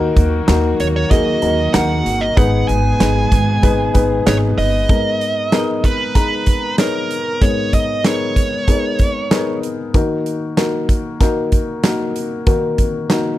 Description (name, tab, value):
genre	piano-driven pop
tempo	95 BPM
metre	4/4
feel	straight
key	G# minor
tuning	A4 = 441 Hz
part	dark upright piano	accompaniment	0.0-13.4 s	G#2 to A#5	-19 LUFS	left 3 dB	none
part	warm studio string section	sustained chords	0.0-4.9 s	F#3 to G#4	-26 LUFS	right 4 dB	none
part	upright bass	bass	0.0-4.8 s	G1 to D#2	-18 LUFS	equal	none
part	huge arena drum kit	drums	0.2-13.2 s	hi-hat, kick drum, snare drum	-16 LUFS	right 1 dB	none
part	dark smooth lead guitar	melody	0.8-9.6 s	A#4 to G#5	-20 LUFS	right 3 dB	overdrive
room	light reverb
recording	dry, close 1970s-style studio recording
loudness	-14 LUFS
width	side -14 dB against mid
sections	0.0-4.9 A section; 4.9-13.4 B section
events	none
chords	0.0 D#m; 2.4 G#m; 4.9 G#madd9; 9.9 D#m